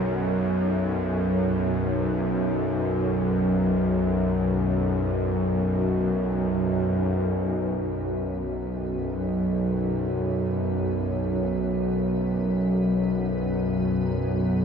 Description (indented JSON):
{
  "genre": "dark ambient drone",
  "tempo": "free time",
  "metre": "none",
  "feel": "none",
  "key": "unclear",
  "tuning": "A4 = 441 Hz",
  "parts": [
    { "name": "bowed-like drone", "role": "drone", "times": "0.0-14.6 s", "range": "B1 to F#2", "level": "-23 LUFS", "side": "equal", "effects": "built-in reverb" },
    { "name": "icy glass pad", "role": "texture", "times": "8.0-14.6 s", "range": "B3 to B4", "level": "-41 LUFS", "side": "equal", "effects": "chorus, built-in reverb" }
  ],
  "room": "wet huge ambient reverb, RT60 9.3 s",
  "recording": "dreamy mix soaked in reverb",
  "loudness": "-23 LUFS",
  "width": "side -6 dB against mid",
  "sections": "0.0-7.3 A section; 7.3-14.6 B section",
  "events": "fade-in on ambient pad 7.3-14.6",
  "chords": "0.0 B5"
}